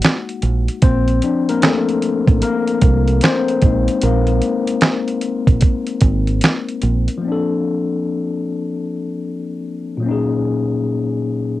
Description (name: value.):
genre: lo-fi hip hop.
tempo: 75 BPM.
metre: 4/4.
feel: swing 66% on 16ths.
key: Bb major.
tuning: A4 = 440 Hz.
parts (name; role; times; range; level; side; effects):
tine electric piano; accompaniment; 0.0-11.6 s; Bb2 to C5; -18 LUFS; left 4 dB; medium stereo tremolo, cassette tape.
dusty soul sampler-style drum kit; drums; 0.0-7.2 s; finger snaps, hi-hat, kick drum, snare drum; -14 LUFS; right 1 dB; none.
deep dub fingered electric bass; bass; 0.4-7.1 s; Ab1 to C2; -16 LUFS; right 1 dB; none.
room: moderate booth ambience, RT60 0.2 s.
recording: home recording on cassette.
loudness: -15 LUFS.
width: side -15 dB against mid.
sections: 0.0-7.2 A section; 7.2-11.6 B section.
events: tine electric piano solo 0.0-7.2.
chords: 0.0 Gb69; 0.8 Bbmaj9; 3.6 Abadd9; 7.2 Bbmaj9; 10.0 Gb69/Bb.